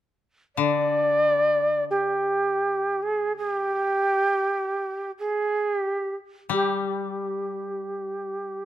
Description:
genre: japanese traditional, Japanese chamber music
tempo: free time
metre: none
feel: none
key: unclear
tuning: A4 = 439 Hz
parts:
  - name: reedy shakuhachi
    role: melody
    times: 0.6-8.7 s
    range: G4 to D5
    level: -23 LUFS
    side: right 1 dB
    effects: none
  - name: koto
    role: accompaniment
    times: 0.6-8.7 s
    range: D3 to G3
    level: -30 LUFS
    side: left 10 dB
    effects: none
room: light reverb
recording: close, detailed microphones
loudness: -23 LUFS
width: side -12 dB against mid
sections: 0.0-8.7 A section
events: none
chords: none

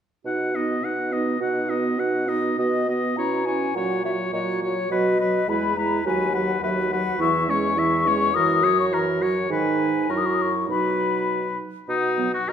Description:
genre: quick classical-period movement for wind quintet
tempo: 104 BPM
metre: 2/4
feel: straight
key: B major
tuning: A4 = 440 Hz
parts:
  - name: clear oboe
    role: second line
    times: 0.3-12.5 s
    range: D#4 to F#5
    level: -27 LUFS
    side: left 3 dB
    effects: none
  - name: mellow French horn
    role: accompaniment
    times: 0.3-12.3 s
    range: D#3 to D#4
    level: -29 LUFS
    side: right 1 dB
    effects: none
  - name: mellow clarinet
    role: accompaniment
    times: 0.3-12.3 s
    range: B3 to F#4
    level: -28 LUFS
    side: right 7 dB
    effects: none
  - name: mellow bassoon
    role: bass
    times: 0.3-12.5 s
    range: D#2 to B2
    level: -26 LUFS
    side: right 2 dB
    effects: none
  - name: mellow hollow silver concert flute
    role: melody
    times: 2.6-12.5 s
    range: C#5 to D#6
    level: -25 LUFS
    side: left 7 dB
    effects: none
room: wet recital hall reverb, RT60 1.4 s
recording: minimal, uncompressed stereo recording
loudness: -20 LUFS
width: side -8 dB against mid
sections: 0.3-2.6 A section; 2.6-11.9 B section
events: none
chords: 0.3 B; 3.2 C#m7/B; 3.8 F#/A#; 4.9 B; 5.5 E; 6.1 B/D#; 7.2 C#m/E; 8.3 F#7; 9.5 G#m; 10.1 F#7; 10.7 B

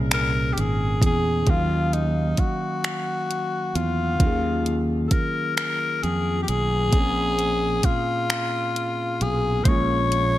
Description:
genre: slow six-eight R&B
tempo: 44 BPM (dotted quarters)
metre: 6/8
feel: straight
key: Eb dorian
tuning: A4 = 440 Hz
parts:
  - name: tine electric piano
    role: accompaniment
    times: 0.0-10.4 s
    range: Bb2 to F5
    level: -28 LUFS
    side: right 1 dB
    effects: none
  - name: fretless electric bass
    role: bass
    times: 0.0-10.4 s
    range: Ab1 to F2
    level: -24 LUFS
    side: right 1 dB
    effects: lush chorus
  - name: growling tenor saxophone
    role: melody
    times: 0.1-10.4 s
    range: Eb4 to Db5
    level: -25 LUFS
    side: left 3 dB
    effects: none
  - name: smooth R&B drum kit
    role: drums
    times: 0.1-10.3 s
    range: finger snaps, hi-hat, kick drum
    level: -23 LUFS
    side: right 1 dB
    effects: gated reverb
room: light reverb, digital ambience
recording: bright 1980s-style digital production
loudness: -20 LUFS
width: side -14 dB against mid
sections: 0.0-1.5 A section; 1.5-10.4 B section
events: none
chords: 0.0 Bbm9; 1.5 Ebm9; 6.9 Bbm9

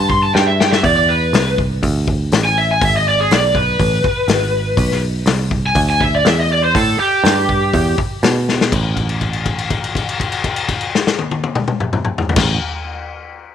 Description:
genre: blues rock power trio and southern rock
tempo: 122 BPM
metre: 4/4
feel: straight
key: A minor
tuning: A4 = 438 Hz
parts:
  - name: overdriven slide guitar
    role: melody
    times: 0.0-8.0 s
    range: G4 to C6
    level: -16 LUFS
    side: equal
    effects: none
  - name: picked electric bass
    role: bass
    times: 0.0-12.6 s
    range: G#1 to B2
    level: -18 LUFS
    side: right 2 dB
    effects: none
  - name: vintage drum kit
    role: drums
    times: 0.1-12.5 s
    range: crash cymbal, hi-hat, kick drum, snare drum, toms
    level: -18 LUFS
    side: left 3 dB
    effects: none
room: small room ambience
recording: 1960s-style stereo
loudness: -13 LUFS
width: side -9 dB against mid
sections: 0.0-8.7 A section; 8.7-12.7 B section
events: electric slide guitar solo 0.0-8.7; drum fill 0.3-0.8, 8.5; held note 8.7-12.4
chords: 0.0 A7(no3); 0.8 E7; 6.8 Asus2; 8.7 N.C.

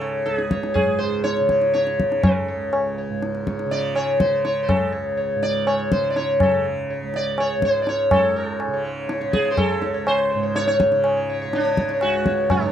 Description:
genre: indian classical, Hindustani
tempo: 123 BPM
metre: 3/4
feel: straight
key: unclear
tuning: A4 = 439 Hz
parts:
  - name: sitar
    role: melody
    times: 0.0-12.7 s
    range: D4 to D5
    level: -21 LUFS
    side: equal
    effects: none
  - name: tanpura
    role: drone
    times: 0.0-12.7 s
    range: C#2 to C#3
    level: -29 LUFS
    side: right 5 dB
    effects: none
  - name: tabla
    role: percussion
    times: 0.0-12.7 s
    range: none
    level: -23 LUFS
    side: left 1 dB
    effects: none
room: little or no reverb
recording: dry, close 1970s-style studio recording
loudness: -19 LUFS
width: side -10 dB against mid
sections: 0.0-8.1 A section; 8.1-12.7 B section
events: none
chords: none

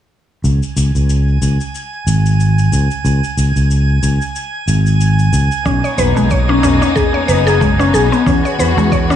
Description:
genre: organic downtempo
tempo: 92 BPM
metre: 4/4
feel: swing 56% on 16ths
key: C# dorian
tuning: A4 = 441 Hz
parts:
  - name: sustaining fretless electric bass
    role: bass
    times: 0.4-9.2 s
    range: F#1 to E2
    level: -13 LUFS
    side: equal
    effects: none
  - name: shaker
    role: drums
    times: 0.4-9.2 s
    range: none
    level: -28 LUFS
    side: left 4 dB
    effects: analog delay
  - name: drifting glass-harmonics texture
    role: texture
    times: 0.9-9.2 s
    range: G#5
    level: -23 LUFS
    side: right 4 dB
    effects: chorus, built-in reverb
  - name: rich studio string section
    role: sustained chords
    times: 5.7-9.2 s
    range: E3 to F#4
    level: -20 LUFS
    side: left 3 dB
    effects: sidechain pumping
  - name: mallet-like synth pluck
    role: arpeggios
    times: 5.7-9.2 s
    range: G#3 to C#5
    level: -14 LUFS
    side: left 2 dB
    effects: chorus, dub echo
  - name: electronic kick drum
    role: drums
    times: 5.7-9.1 s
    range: none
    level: -18 LUFS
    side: equal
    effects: none
  - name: darbuka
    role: percussion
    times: 6.0-8.7 s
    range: none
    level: -24 LUFS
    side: right 3 dB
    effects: none
room: light reverb, digital ambience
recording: echo-heavy mix, studio reverb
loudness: -11 LUFS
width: side -10 dB against mid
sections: 0.4-9.2 A section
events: filter sweep on fretless electric bass 0.4-9.2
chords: 0.4 C#5; 5.7 Bmaj7; 8.3 E

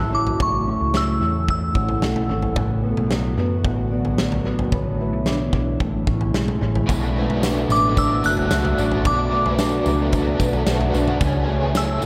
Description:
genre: dream pop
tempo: 111 BPM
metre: 4/4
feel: straight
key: unclear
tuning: A4 = 438 Hz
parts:
  - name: glassy synth bell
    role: melody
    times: 0.0-2.3, 7.7-12.1 s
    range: C#6 to F#6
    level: -26 LUFS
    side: equal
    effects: chorus, tremolo, tape echo
  - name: ethereal airy pad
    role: sustained chords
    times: 0.0-12.1 s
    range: C#3 to A5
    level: -30 LUFS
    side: equal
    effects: ensemble chorus, built-in reverb, phaser
  - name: mellow electric guitar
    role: arpeggios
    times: 0.0-12.1 s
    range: A2 to B4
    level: -28 LUFS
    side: equal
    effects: analog chorus, tape echo
  - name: hollow-body short-scale fingered electric bass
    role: bass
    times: 0.0-12.1 s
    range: F#1 to F#2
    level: -27 LUFS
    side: equal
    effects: none
  - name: vibraphone with medium hard mallets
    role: texture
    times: 0.0-12.1 s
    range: D4 to B5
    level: -37 LUFS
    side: equal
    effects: tape echo
  - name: huge arena drum kit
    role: drums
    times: 0.3-12.1 s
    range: kick drum, snare drum, tambourine, toms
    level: -27 LUFS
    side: equal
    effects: tape echo
  - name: biting overdriven guitar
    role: accompaniment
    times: 6.9-12.1 s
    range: B2 to G#4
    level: -28 LUFS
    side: equal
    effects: tremolo, analog chorus, tape echo
room: wet spring reverb, RT60 1.9 s, studio reverb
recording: echo-heavy mix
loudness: -20 LUFS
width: mono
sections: 0.0-6.9 A section; 6.9-12.1 B section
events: none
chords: 0.4 A; 2.6 Bm7/A; 4.7 E7/A; 5.8 Amaj7; 6.9 Bm7; 11.2 Amaj7

